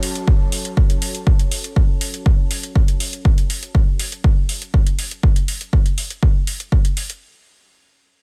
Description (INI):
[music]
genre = acid house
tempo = 121 BPM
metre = 4/4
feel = straight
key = F# minor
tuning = A4 = 440 Hz
[part]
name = electronic hi-hat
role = drums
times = 0.0-7.2 s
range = none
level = -28 LUFS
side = equal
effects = none
[part]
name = deep dark ambient pad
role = texture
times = 0.0-3.3 s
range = F#4 to A5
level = -36 LUFS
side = equal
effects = chorus, built-in reverb, sidechain pumping
[part]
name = electronic kick drum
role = drums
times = 0.3-6.8 s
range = none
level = -18 LUFS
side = equal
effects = none
[sound]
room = little or no reverb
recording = none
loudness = -18 LUFS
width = mono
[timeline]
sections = 0.0-7.2 A section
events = none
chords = 0.0 F#m